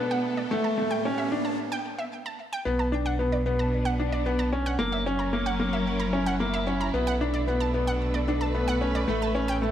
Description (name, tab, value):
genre	piano and strings electronica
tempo	112 BPM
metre	4/4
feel	straight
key	B minor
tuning	A4 = 440 Hz
part	warm studio string section	sustained chords	0.0-9.7 s	A2 to B4	-31 LUFS	equal	none
part	clear upright piano	riff	0.0-9.7 s	A3 to D4	-27 LUFS	left 1 dB	digital delay
part	riser	sound effects	0.0-1.6 s	none	-36 LUFS	right 3 dB	none
part	analog pluck	arpeggios	0.1-9.6 s	D5 to A#5	-34 LUFS	right 3 dB	chorus, digital delay
part	warm sub bass	bass	2.7-9.7 s	F#1 to B1	-30 LUFS	equal	tube saturation
room	moderate scoring stage reverb, RT60 1.8 s, small room ambience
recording	none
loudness	-24 LUFS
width	side -10 dB against mid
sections	0.0-2.7 A section; 2.7-9.7 B section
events	build-up 0.0-2.7; riser 0.0-1.6; filter sweep on synth arpeggio sound 0.0-2.7; break 1.6-2.7; drop 2.7-9.7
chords	0.0 Bm7; 0.5 A7; 2.7 Bm7; 4.8 F#7; 6.9 Bm7; 9.1 A7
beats	| 0.51 1.05 1.58 2.12 | 2.66 3.19 3.73 4.26 | 4.80 5.33 5.87 6.41 | 6.94 7.48 8.01 8.55 | 9.09 9.62